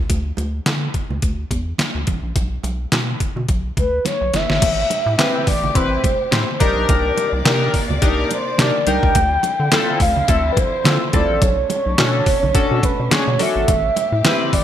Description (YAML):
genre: early-eighties boogie funk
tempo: 106 BPM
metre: 4/4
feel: swing 56% on 16ths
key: unclear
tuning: A4 = 440 Hz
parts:
  - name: rubbery square bass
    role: bass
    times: 0.0-14.6 s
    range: G1 to D3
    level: -22 LUFS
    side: equal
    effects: none
  - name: detuned 8-bit digital drum machine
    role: drums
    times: 0.1-14.6 s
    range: crash cymbal, handclaps, hi-hat, kick drum, snare drum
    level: -19 LUFS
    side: equal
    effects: none
  - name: congas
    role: percussion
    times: 0.1-14.4 s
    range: none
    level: -30 LUFS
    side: right 7 dB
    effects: none
  - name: mellow horn-like synth lead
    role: melody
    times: 3.8-14.6 s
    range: B4 to G5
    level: -20 LUFS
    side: right 1 dB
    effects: chorus, digital delay
  - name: warm studio string section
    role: sustained chords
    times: 4.6-14.6 s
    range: B2 to D5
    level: -29 LUFS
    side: left 1 dB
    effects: none
  - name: chorused polysynth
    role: accompaniment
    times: 5.2-14.5 s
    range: C4 to C5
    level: -21 LUFS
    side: left 3 dB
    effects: none
room: light reverb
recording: bright 1980s-style digital production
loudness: -15 LUFS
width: side -10 dB against mid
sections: 0.0-4.6 A section; 4.6-14.6 B section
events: drum fill 4.1-4.6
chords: 0.1 N.C.; 4.6 Am9; 6.6 Cm9; 9.2 Dm9; 11.4 Bm9; 13.7 Am9